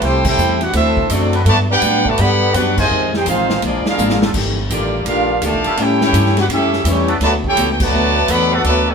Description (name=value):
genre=jazz, big band swing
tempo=167 BPM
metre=4/4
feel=swing 65% on 8ths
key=D major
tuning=A4 = 444 Hz
part: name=clear trumpet section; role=melody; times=0.0-8.9 s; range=A3 to B5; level=-17 LUFS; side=right 1 dB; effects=none
part: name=muted trombone section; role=second line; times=0.0-8.9 s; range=Bb2 to G4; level=-20 LUFS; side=equal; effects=none
part: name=vintage hollow-body jazz guitar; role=accompaniment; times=0.0-8.9 s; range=F2 to G4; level=-22 LUFS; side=left 3 dB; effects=none
part: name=muted trombone section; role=sustained chords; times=0.0-8.9 s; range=F#3 to C5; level=-24 LUFS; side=equal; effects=none
part: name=upright bass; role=bass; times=0.0-8.9 s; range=G1 to A2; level=-19 LUFS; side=equal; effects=none
part: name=swinging big-band drum kit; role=drums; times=0.0-8.7 s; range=crash cymbal, hi-hat, kick drum, ride cymbal, snare drum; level=-22 LUFS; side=equal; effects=none
room=wet studio reverb, RT60 0.6 s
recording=band playing live in one room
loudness=-13 LUFS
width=side -6 dB against mid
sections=0.0-8.9 A section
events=band accent 0.2, 2.7, 7.7; drum fill 4.0-4.3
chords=0.0 Am7; 0.7 D7; 1.5 Gmaj7; 2.9 Fm7; 3.6 Bb7; 4.3 Ebmaj9#11; 5.8 A7; 7.2 D6